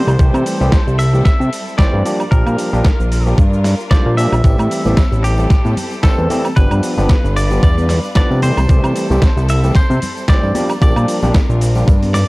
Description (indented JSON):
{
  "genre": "nu-disco, nu disco",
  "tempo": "113 BPM",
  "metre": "4/4",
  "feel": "swing 55% on 16ths",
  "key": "unclear",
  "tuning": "A4 = 440 Hz",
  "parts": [
    { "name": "direct-recorded clean electric guitar", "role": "melody", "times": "0.0-12.3 s", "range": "G4 to E5", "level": "-23 LUFS", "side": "equal", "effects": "tape echo" },
    { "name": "overdriven tine electric piano", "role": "accompaniment", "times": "0.0-11.9 s", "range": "E3 to C5", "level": "-21 LUFS", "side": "equal", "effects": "sidechain pumping" },
    { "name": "clear studio string section", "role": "sustained chords", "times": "0.0-12.3 s", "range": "G3 to B4", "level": "-28 LUFS", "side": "equal", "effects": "sidechain pumping" },
    { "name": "fat analog bass", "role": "bass", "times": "0.0-12.2 s", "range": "G1 to C3", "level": "-14 LUFS", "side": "equal", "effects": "none" },
    { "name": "dusty soul sampler-style drum kit", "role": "drums", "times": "0.1-12.3 s", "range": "cabasa, hi-hat, snare drum, woodblock", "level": "-24 LUFS", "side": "right 1 dB", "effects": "overdrive" },
    { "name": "electronic kick drum", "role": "drums", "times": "0.2-12.0 s", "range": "none", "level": "-12 LUFS", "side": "equal", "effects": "none" },
    { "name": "tambourine and congas", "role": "percussion", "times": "4.4-12.3 s", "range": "none", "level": "-26 LUFS", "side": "left 2 dB", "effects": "none" }
  ],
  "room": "little or no reverb",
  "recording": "dry, gritty hardware recording",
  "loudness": "-11 LUFS",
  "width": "side -22 dB against mid",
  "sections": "0.0-12.3 A section",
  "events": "none",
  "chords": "0.0 C6; 2.1 Bb6; 4.4 Am7; 6.6 G7; 8.4 C6; 10.5 Bb6"
}